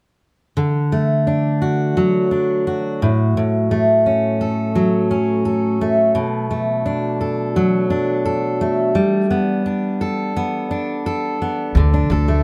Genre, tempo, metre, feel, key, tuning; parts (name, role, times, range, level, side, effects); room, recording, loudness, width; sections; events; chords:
acoustic pop; 86 BPM; 4/4; straight; D major; A4 = 440 Hz
fingerpicked steel-string acoustic guitar; accompaniment; 0.6-12.4 s; A2 to A4; -19 LUFS; equal
upright bass; bass; 11.7-12.4 s; D2; -18 LUFS; equal
light reverb; -19 LUFS; mono
0.6-11.8 A section
0.6 D; 3.0 A6; 6.2 Bm7; 9.0 Gadd9; 11.8 D5